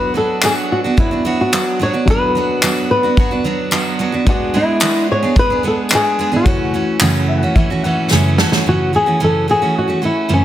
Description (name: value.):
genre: acoustic pop.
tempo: 110 BPM.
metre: 4/4.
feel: straight.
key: F# minor.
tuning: A4 = 441 Hz.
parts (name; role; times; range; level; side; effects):
flamenco guitar; melody; 0.0-10.4 s; C#4 to C#5; -17 LUFS; left 1 dB; none.
felt-muted upright piano; accompaniment; 0.0-8.7 s; F#3 to A5; -25 LUFS; left 4 dB; none.
picked steel-string acoustic guitar; accompaniment; 0.0-10.4 s; F#2 to G#4; -17 LUFS; right 2 dB; none.
natural country drum kit; drums; 0.4-8.6 s; handclaps, kick drum, snare drum; -17 LUFS; equal; none.
tambourine; percussion; 0.4-8.2 s; none; -28 LUFS; left 7 dB; none.
room: light reverb, small room ambience.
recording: dense, heavily limited modern master.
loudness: -13 LUFS.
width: side -12 dB against mid.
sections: 0.0-8.7 A section; 8.7-10.4 B section.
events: felt piano fill 7.0-8.7; drum fill 8.1-8.7.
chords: 0.0 Bm/F#; 4.3 G#dim; 6.5 F#m7.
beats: 0.43 0.98 1.53 | 2.08 2.62 3.17 3.72 | 4.27 4.82 5.36 5.91 | 6.46 7.01 7.56 8.11 | 8.65 9.20 9.75 10.30.